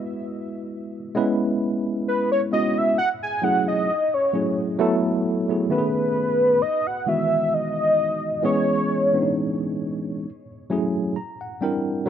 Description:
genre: R&B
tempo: 66 BPM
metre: 4/4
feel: swing 54% on 16ths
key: F# dorian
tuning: A4 = 440 Hz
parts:
  - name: tine electric piano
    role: accompaniment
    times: 0.0-12.1 s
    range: D#3 to Bb5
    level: -23 LUFS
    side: right 1 dB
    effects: overdrive, fast stereo tremolo
  - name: warm velvety synth lead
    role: melody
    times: 2.1-9.8 s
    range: B4 to G#5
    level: -22 LUFS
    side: equal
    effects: chorus
room: light reverb, digital ambience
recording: rough home demo mix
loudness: -20 LUFS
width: side -9 dB against mid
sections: 0.0-4.8 A section; 4.8-12.1 B section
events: soft synth lead solo 0.0-4.8; tine electric piano fill 10.2-12.1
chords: 0.0 Eadd9; 1.1 C#m7; 3.0 F#m9; 4.8 B7sus4; 5.7 B13; 6.6 Emaj9; 8.4 C#m7; 10.2 F#m9; 11.2 C9

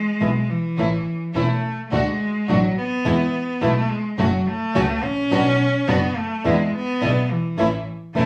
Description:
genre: tango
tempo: 106 BPM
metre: 4/4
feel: rubato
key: unclear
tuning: A4 = 445 Hz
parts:
  - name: rich cello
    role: second line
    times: 0.0-8.3 s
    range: E3 to C#4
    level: -25 LUFS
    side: equal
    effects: none
  - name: flamenco guitar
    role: accompaniment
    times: 0.2-8.2 s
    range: B2 to F#4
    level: -24 LUFS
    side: equal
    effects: none
  - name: clear double bass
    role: bass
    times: 0.2-8.3 s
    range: E1 to E2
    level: -27 LUFS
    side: equal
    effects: none
  - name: rich studio string section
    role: stabs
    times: 0.8-8.3 s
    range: G#3 to F#4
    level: -30 LUFS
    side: equal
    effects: slapback echo
room: moderate studio ambience, RT60 0.5 s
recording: studio reverb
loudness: -21 LUFS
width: mono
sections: 0.0-8.3 A section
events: cello solo 0.0-8.3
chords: 0.0 E; 0.8 A; 1.9 D; 3.1 E; 4.2 F#m; 5.3 Bm; 6.5 E7; 7.6 A

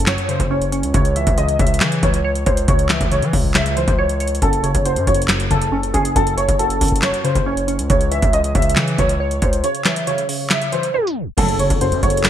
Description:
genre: hip hop, trap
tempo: 138 BPM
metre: 4/4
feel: half-time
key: C# harmonic minor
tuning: A4 = 440 Hz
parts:
  - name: dark grand piano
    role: melody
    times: 0.0-12.2 s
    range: G#4 to E5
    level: -20 LUFS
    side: equal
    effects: analog chorus
  - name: glassy wavetable pluck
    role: accompaniment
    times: 0.0-12.3 s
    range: F#2 to C#5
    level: -23 LUFS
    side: equal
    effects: chorus
  - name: distorted 808-style bass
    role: bass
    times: 0.0-12.3 s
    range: F#1 to E3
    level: -21 LUFS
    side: equal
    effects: distortion
  - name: booming analog drum machine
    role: drums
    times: 0.0-12.3 s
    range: crash cymbal, handclaps, hi-hat, kick drum, snare drum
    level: -19 LUFS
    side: equal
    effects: gated reverb
  - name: warbly tape-like pad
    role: sustained chords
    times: 11.6-12.3 s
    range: C#3 to A4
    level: -27 LUFS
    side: left 2 dB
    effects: chorus, built-in reverb
  - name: rich studio string section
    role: stabs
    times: 11.4-11.7 s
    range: A2 to F#3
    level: -26 LUFS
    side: right 7 dB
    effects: none
  - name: impact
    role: sound effects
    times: 11.6-12.3 s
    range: none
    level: -30 LUFS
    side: equal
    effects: none
room: light reverb, digital ambience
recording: bright 1980s-style digital production, tape stop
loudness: -15 LUFS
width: side -10 dB against mid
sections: 0.0-11.4 A section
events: break 9.6-11.4; tape stop 10.9-11.4; impact 11.4-12.3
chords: 0.0 F#5; 0.9 C#m; 4.4 F#m; 7.9 C#m; 11.4 F#m

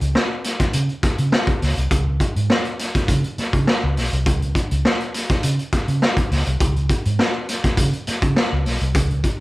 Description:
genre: funk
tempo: 102 BPM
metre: 4/4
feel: straight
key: unclear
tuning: A4 = 440 Hz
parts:
  - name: vintage muted fingered electric bass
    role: bass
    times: 0.0-9.2 s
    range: Cb2 to Db3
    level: -20 LUFS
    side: equal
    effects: none
  - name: raw garage drum kit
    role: drums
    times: 0.0-9.4 s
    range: hi-hat, kick drum, snare drum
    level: -19 LUFS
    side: equal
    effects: none
room: little or no reverb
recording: none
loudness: -17 LUFS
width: side -19 dB against mid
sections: 0.0-9.4 A section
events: none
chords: none

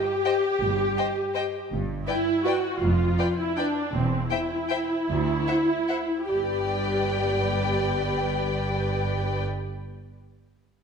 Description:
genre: classical, orchestral ballroom waltz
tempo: 142-174 BPM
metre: 3/4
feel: rubato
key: G major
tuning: A4 = 441 Hz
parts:
  - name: rich symphonic viola section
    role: accompaniment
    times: 0.0-9.4 s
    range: C4 to G4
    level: -26 LUFS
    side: equal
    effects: none
  - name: warm symphonic violin section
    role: melody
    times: 0.2-9.4 s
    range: F#5 to G5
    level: -33 LUFS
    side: left 5 dB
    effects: none
  - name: rich studio violin section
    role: second line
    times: 0.3-9.4 s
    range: B4 to E5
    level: -32 LUFS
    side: left 4 dB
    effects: none
  - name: clear symphonic double bass section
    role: bass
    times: 0.6-9.4 s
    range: E1 to D2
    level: -31 LUFS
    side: right 2 dB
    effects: none
  - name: rich symphonic cello section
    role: bass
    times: 0.6-9.4 s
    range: D2 to G2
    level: -31 LUFS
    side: right 2 dB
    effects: none
room: moderate scoring stage reverb, RT60 1.6 s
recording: none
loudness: -23 LUFS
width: side -6 dB against mid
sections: 0.0-6.3 A section; 6.3-8.6 B section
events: slowing down 3.4-6.3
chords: 0.0 N.C.; 2.8 G7(no3)/F (rootless); 3.9 C/E; 5.1 Dsus2; 6.3 G

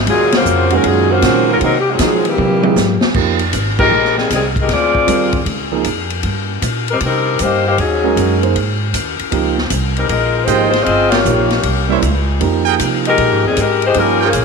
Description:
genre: jazz, big band swing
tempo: 156 BPM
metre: 4/4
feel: swing 66% on 8ths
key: F minor from 3.1 s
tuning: A4 = 441 Hz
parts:
  - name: upright bass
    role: bass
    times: 0.0-14.4 s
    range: G1 to Eb3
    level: -19 LUFS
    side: equal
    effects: none
  - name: mellow saxophone section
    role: melody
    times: 0.1-14.4 s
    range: Eb3 to Eb5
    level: -15 LUFS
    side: left 4 dB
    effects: none
  - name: brilliant trombone section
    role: second line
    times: 0.1-3.0 s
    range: Bb2 to C4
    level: -22 LUFS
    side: right 12 dB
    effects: none
  - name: swinging big-band drum kit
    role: drums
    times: 0.1-14.4 s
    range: crash cymbal, hi-hat, kick drum, ride cymbal, snare drum, toms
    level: -19 LUFS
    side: left 2 dB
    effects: none
  - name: warm concert grand piano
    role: accompaniment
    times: 0.7-14.2 s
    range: Eb3 to C5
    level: -19 LUFS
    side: right 12 dB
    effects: none
  - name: clear trumpet section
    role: stabs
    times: 10.5-14.3 s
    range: Eb4 to G5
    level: -20 LUFS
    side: right 11 dB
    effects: slapback echo
room: light reverb, studio ambience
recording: 1960s-style stereo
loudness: -12 LUFS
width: side -4 dB against mid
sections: 0.0-3.1 A section; 3.1-14.4 B section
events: band accent 0.3, 3.7, 11.1; drum fill 2.4-3.1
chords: 0.1 Ebm11; 1.6 Cm7b5; 2.4 C7b13; 3.1 Fm11; 4.7 Dm7b5; 5.5 Db69; 6.2 Cm7; 7.8 Ebm7; 8.5 Ab5; 9.3 Dbmaj9#11; 10.9 Gm7b5; 11.6 C7b9; 12.4 Fm11; 13.9 Gm7b5

